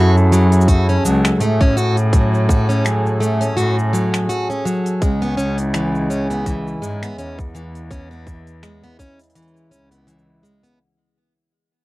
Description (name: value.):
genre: folktronica.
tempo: 83 BPM.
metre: 4/4.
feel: swing 56% on 16ths.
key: unclear.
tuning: A4 = 436 Hz.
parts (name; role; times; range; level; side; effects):
mellow accordion; sustained chords; 0.0-10.8 s; C#3 to A4; -25 LUFS; right 2 dB; none.
picked plugged-in steel-string acoustic guitar; arpeggios; 0.0-10.8 s; E3 to F#4; -21 LUFS; equal; tape echo.
warm cello; bass; 0.0-10.8 s; C#2 to A2; -18 LUFS; equal; none.
organic electronic drum kit; drums; 0.2-10.8 s; cabasa, finger snaps, hi-hat; -26 LUFS; equal; overdrive.
electronic kick drum; drums; 0.7-9.2 s; none; -16 LUFS; equal; overdrive.
room: little or no reverb.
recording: dry, close 1970s-style studio recording.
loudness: -15 LUFS.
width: side -19 dB against mid.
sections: 0.0-10.8 A section.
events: fade-out 0.0-10.8.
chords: 0.0 F#m; 5.0 C#m7.